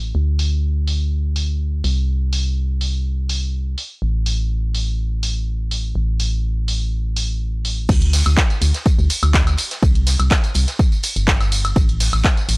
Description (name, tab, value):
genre	piano house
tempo	124 BPM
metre	4/4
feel	straight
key	unclear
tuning	A4 = 440 Hz
part	organ-like FM bass	bass	0.0-12.6 s	G1 to D2	-18 LUFS	equal	sidechain pumping
part	punchy analog drum machine	drums	0.4-12.6 s	crash cymbal, handclaps, hi-hat, ride cymbal, tambourine, woodblock	-22 LUFS	equal	low-pass filter on hats, low-pass filter on cymbals, low-pass filter on perc, low-pass filter on snare, low-pass filter on room
part	crunchy breakbeat drum kit	drums	7.9-12.6 s	hi-hat, snare drum	-33 LUFS	equal	high-pass filter on hats, high-pass filter on snare, high-pass filter on room
part	electronic kick drum	drums	7.9-12.3 s	none	-16 LUFS	equal	overdrive
room	little or no reverb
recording	dry, gritty hardware recording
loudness	-16 LUFS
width	side -28 dB against mid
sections	0.0-7.9 A section; 7.9-12.6 B section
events	drop 7.9-12.6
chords	none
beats	| 0.15 0.63 1.12 1.60 | 2.08 2.57 3.05 3.54 | 4.02 4.50 4.99 5.47 | 5.96 6.44 6.92 7.41 | 7.89 8.38 8.86 9.34 | 9.83 10.31 10.79 11.28 | 11.76 12.25